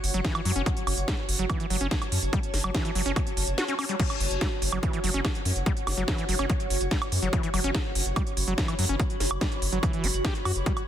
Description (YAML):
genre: psychedelic trance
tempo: 144 BPM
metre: 4/4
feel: straight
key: F# phrygian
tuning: A4 = 440 Hz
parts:
  - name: round analog bass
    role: bass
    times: 0.0-10.6 s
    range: F#1 to F#2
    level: -29 LUFS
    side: equal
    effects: none
  - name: techno drum kit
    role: drums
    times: 0.0-10.8 s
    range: crash cymbal, hi-hat, snare drum, woodblock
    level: -31 LUFS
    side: right 2 dB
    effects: none
  - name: granular cloud pad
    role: texture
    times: 0.0-10.9 s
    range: F#4 to B5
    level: -34 LUFS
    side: equal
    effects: built-in reverb, sidechain pumping
  - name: overdriven acid bass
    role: riff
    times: 0.1-10.7 s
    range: E3 to G4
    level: -32 LUFS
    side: moving between left 6 dB and right 4 dB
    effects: distortion, auto-pan, sidechain pumping, ping-pong delay
  - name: electronic kick drum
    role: drums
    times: 0.2-10.7 s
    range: none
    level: -28 LUFS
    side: equal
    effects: none
room: light reverb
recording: dense, heavily limited modern master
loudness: -24 LUFS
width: side -10 dB against mid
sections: 0.0-10.9 A section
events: none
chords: 0.0 F#5